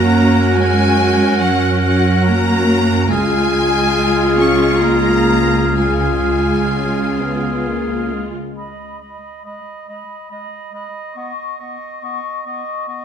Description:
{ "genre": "cinematic, emotional film score for orchestra", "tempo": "62-72 BPM", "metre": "3/4", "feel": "rubato", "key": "G# minor", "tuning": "A4 = 439 Hz", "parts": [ { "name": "rich studio violin section", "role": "melody", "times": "0.0-8.1 s", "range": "F#5 to C#6", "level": "-24 LUFS", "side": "left 4 dB", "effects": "none" }, { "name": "clear oboe", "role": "second line", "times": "0.0-13.0 s", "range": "D#5 to F#5", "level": "-25 LUFS", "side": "right 2 dB", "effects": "none" }, { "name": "warm clarinet", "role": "second line", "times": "0.0-13.0 s", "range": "G#3 to A#4", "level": "-26 LUFS", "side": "equal", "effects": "none" }, { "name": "warm studio violin section", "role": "second line", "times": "0.0-8.1 s", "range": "F#5 to C#6", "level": "-25 LUFS", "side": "left 1 dB", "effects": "none" }, { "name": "clear studio viola section", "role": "accompaniment", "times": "0.0-8.3 s", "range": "G#3 to F#4", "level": "-20 LUFS", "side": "right 2 dB", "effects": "none" }, { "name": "mellow French horn section", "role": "sustained chords", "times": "0.0-8.6 s", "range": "G#3 to F#4", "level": "-20 LUFS", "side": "left 4 dB", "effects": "none" }, { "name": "dark studio cello section", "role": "bass", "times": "0.0-8.1 s", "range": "F#3 to C#4", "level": "-19 LUFS", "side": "right 1 dB", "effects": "none" }, { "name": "rich studio double bass section", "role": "bass", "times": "0.0-8.3 s", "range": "C#2 to F#2", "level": "-20 LUFS", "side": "right 3 dB", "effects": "none" }, { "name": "mellow flute section", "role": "second line", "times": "8.6-13.0 s", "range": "B5 to C#6", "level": "-28 LUFS", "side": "left 5 dB", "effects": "none" } ], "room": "moderate scoring stage reverb, RT60 1.6 s", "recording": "none", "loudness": "-13 LUFS", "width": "side -8 dB against mid", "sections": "0.0-8.6 A section; 8.6-13.0 B section", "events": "none", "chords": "0.0 F#; 3.1 C#; 8.6 G#m; 11.2 Badd9", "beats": "| 0.57 1.41 2.25 | 3.10 3.97 4.85 | 5.78 6.73 7.67 | 8.58 9.45 10.31 | 11.16 12.02 12.86" }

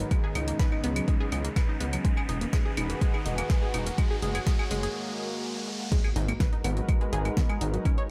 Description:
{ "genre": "melodic techno", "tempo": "124 BPM", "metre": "4/4", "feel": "straight", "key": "G# minor", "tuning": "A4 = 440 Hz", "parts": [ { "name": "lush unison pad", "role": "sustained chords", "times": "0.0-8.1 s", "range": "C#3 to B4", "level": "-39 LUFS", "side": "equal", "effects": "chorus, sidechain pumping" }, { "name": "tight sequenced synth", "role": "arpeggios", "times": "0.0-8.0 s", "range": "F#3 to C#5", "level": "-37 LUFS", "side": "equal", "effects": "chorus, phaser, sidechain pumping, digital delay" }, { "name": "gritty driven synth bass", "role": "bass", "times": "0.0-7.8 s", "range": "E1 to C#2", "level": "-32 LUFS", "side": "equal", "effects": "sidechain pumping" }, { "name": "analog drone", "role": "drone", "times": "0.0-5.0 s", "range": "G#2 to D#3", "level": "-46 LUFS", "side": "equal", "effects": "none" }, { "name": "riser and impact", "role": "sound effects", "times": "0.0-7.9 s", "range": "none", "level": "-42 LUFS", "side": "equal", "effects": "none" }, { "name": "warbly tape-like pad", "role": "texture", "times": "0.1-8.1 s", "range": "C#4 to A#5", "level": "-43 LUFS", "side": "equal", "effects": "chorus, built-in reverb, sidechain pumping" }, { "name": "deep house drum kit", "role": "drums", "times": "0.1-8.1 s", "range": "claves, crash cymbal, hi-hat, snare drum, toms", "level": "-39 LUFS", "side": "equal", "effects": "sidechain pumping on hats, high-pass filter on hats, high-pass filter on snare, sidechain pumping on perc, high-pass filter on perc, sidechain pumping on toms, high-pass filter on toms, sidechain pumping on cymbals, high-pass filter on cymbals, high-pass filter on room" }, { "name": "electronic kick drum", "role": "drums", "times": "0.1-8.0 s", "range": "none", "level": "-28 LUFS", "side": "equal", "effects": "none" } ], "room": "light reverb, digital ambience", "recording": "none", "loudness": "-28 LUFS", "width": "mono", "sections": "0.0-5.9 A section; 5.9-8.1 B section", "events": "build-up 0.0-5.9; riser 0.0-5.9; break 5.0-5.9; drum fill 5.6-5.9; drop 5.9-8.1; impact 5.9-7.9", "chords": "0.1 C#5; 2.0 Eadd9; 4.0 F#add9; 5.9 G#m7", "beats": "| 0.11 0.59 1.08 1.56 | 2.05 2.53 3.02 3.50 | 3.98 4.47 4.95 5.43 | 5.92 6.40 6.89 7.37 | 7.85" }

